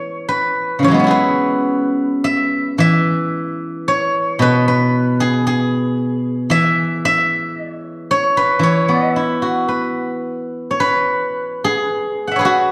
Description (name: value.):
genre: chinese traditional, Chinese solo plucked strings.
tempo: 56 BPM.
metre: 2/4.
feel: uneven beats, rubato.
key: E gong mode.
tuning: A4 = 440 Hz.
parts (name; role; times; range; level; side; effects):
steel-string zither; solo; 0.0-12.7 s; B2 to F#5; -17 LUFS; equal; slapback echo.
room: moderate scoring stage reverb, RT60 1.6 s.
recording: dark, warm production.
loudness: -17 LUFS.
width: mono.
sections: 0.0-10.8 A section; 10.8-12.7 B section.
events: none.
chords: none.